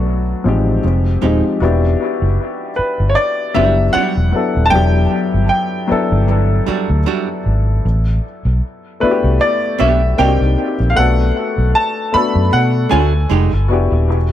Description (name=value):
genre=R&B, neo-soul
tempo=77 BPM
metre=4/4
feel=swing 55% on 16ths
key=E minor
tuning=A4 = 440 Hz
part: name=clear baby grand piano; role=melody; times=0.0-13.6 s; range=B4 to B5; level=-18 LUFS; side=equal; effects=dub echo
part: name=warm baby grand piano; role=accompaniment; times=0.0-14.2 s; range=F3 to A4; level=-18 LUFS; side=left 4 dB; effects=dub echo
part: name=vintage muted fingered electric bass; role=bass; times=0.0-14.3 s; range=Eb1 to B2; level=-14 LUFS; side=equal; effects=none
part: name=archtop guitar, miked and amplified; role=second line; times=0.8-13.5 s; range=G3 to G4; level=-20 LUFS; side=right 11 dB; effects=none
room=light reverb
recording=echo-heavy mix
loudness=-13 LUFS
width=side -11 dB against mid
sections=0.0-1.6 A section; 1.6-14.3 B section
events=none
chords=0.0 Bm7; 0.8 Fm9; 1.6 Em9; 7.8 A9sus4; 10.2 Cm7; 11.0 Bm7; 13.3 Fm9